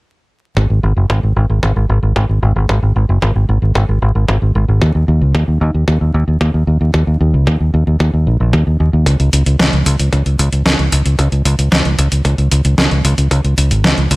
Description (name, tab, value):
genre	italo disco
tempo	113 BPM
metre	4/4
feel	straight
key	unclear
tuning	A4 = 439 Hz
part	fingered electric bass	bass	0.6-14.2 s	Gb1 to Eb2	-12 LUFS	equal	tube saturation
part	electronic kick drum	drums	0.6-13.9 s	none	-22 LUFS	equal	high-pass filter on kick, high-pass filter on room
part	clean 12-bit digital drum machine	drums	9.1-14.2 s	hi-hat, snare drum	-16 LUFS	equal	low-pass filter on hats, low-pass filter on snare, low-pass filter on room, gated reverb
room	little or no reverb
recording	vinyl crackle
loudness	-11 LUFS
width	side -23 dB against mid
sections	0.6-14.2 A section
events	none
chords	none